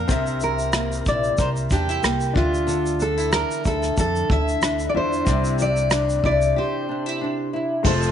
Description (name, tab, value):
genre	acoustic pop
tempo	93 BPM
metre	4/4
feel	swing 55% on 16ths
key	unclear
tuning	A4 = 440 Hz
part	fingerpicked steel-string acoustic guitar	melody	0.0-8.1 s	F4 to E5	-24 LUFS	equal	none
part	clear grand piano	accompaniment	0.0-8.1 s	Ab3 to A5	-30 LUFS	left 10 dB	none
part	nylon-string guitar	accompaniment	0.0-8.1 s	C3 to Bb4	-26 LUFS	equal	double-tracked left and right
part	upright bass	bass	0.0-8.1 s	F1 to F2	-25 LUFS	equal	none
part	soft brush drum kit	drums	0.1-8.1 s	crash cymbal, kick drum, rim click, shaker	-24 LUFS	equal	none
part	egg shaker	percussion	7.8-8.1 s	none	-38 LUFS	right 16 dB	none
room	light reverb, studio reverb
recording	1960s-style stereo with parts hard left and right, nothing above 10.4 kHz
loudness	-19 LUFS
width	side -9 dB against mid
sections	0.0-7.8 A section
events	break 6.6-7.8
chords	0.1 C7; 2.4 Dmadd9; 5.3 Cadd9